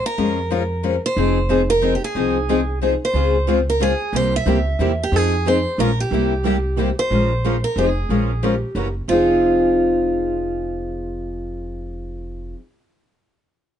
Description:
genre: acoustic string swing (jazz manouche)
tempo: 182 BPM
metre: 3/4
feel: swing 62% on 8ths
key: F minor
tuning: A4 = 438 Hz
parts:
  - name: picked steel-string acoustic guitar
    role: melody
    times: 0.0-12.5 s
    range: F4 to E5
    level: -21 LUFS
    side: right 2 dB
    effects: none
  - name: picked steel-string acoustic guitar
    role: accompaniment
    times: 0.2-12.6 s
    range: C3 to Bb4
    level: -22 LUFS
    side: left 6 dB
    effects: none
  - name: upright bass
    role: bass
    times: 0.2-12.5 s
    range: F1 to F2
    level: -23 LUFS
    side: equal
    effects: none
  - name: picked steel-string acoustic guitar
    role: accompaniment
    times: 1.2-12.6 s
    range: C3 to Bb4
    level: -26 LUFS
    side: right 9 dB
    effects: none
room: light reverb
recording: nothing above 10.8 kHz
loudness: -17 LUFS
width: side -9 dB against mid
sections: 0.0-7.1 A section; 7.1-9.1 B section; 9.1-11.1 C section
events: none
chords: 0.0 Bbm7; 1.2 Fm7; 3.1 Dbmaj7; 4.1 C7; 5.1 Fm7; 5.8 Bbm7; 6.1 C7; 7.1 Bbm9; 7.8 Fm7; 8.1 Bbm7; 8.8 Gb9; 9.1 Fm7

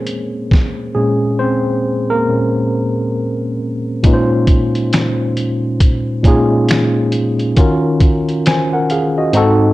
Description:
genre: lo-fi hip hop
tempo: 68 BPM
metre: 4/4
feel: swing 60% on 16ths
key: Bb minor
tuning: A4 = 438 Hz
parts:
  - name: tine electric piano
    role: accompaniment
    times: 0.0-9.7 s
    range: Ab2 to Ab5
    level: -14 LUFS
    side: equal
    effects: medium stereo tremolo, cassette tape
  - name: lo-fi sampler-style drum kit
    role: drums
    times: 0.1-9.6 s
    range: finger snaps, hi-hat, kick drum, snare drum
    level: -14 LUFS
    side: equal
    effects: none
room: moderate studio reverb, RT60 0.7 s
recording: cassette tape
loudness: -12 LUFS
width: side -17 dB against mid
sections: 0.0-4.0 A section; 4.0-9.7 B section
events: tine electric piano solo 0.0-4.0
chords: 0.0 Bbm9; 4.0 Bbm11; 7.6 Ebm7

